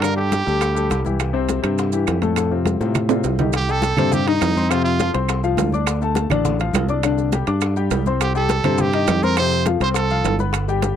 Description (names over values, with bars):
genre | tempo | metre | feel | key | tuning
latin, salsa | 206 BPM | 4/4 | straight | F major | A4 = 440 Hz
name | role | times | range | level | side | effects
brilliant trumpet | melody | 0.0-1.0, 3.6-5.1, 8.2-10.4 s | Eb4 to C5 | -22 LUFS | right 5 dB | none
clear grand piano | accompaniment | 0.0-10.9 s | A2 to D6 | -22 LUFS | left 8 dB | none
modern bright fingered electric bass | bass | 0.0-10.9 s | G1 to A2 | -21 LUFS | right 2 dB | none
bongos | percussion | 0.0-11.0 s | none | -30 LUFS | left 7 dB | none
claves | percussion | 0.0-10.7 s | none | -29 LUFS | right 24 dB | none
congas | percussion | 0.0-11.0 s | none | -26 LUFS | right 1 dB | none
maracas | percussion | 0.0-11.0 s | none | -35 LUFS | right 25 dB | none
timbales | percussion | 0.0-11.0 s | none | -25 LUFS | right 12 dB | none
room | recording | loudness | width
little or no reverb | dry, close 1970s-style studio recording | -17 LUFS | side -9 dB against mid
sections
0.0-3.5 A section; 3.5-11.0 B section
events
drum fill 2.7-3.5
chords
0.0 Gsus2; 1.2 C; 2.4 F; 3.5 Cm; 4.7 F5; 5.9 Dm; 7.0 Csus2; 8.2 Cm; 9.4 F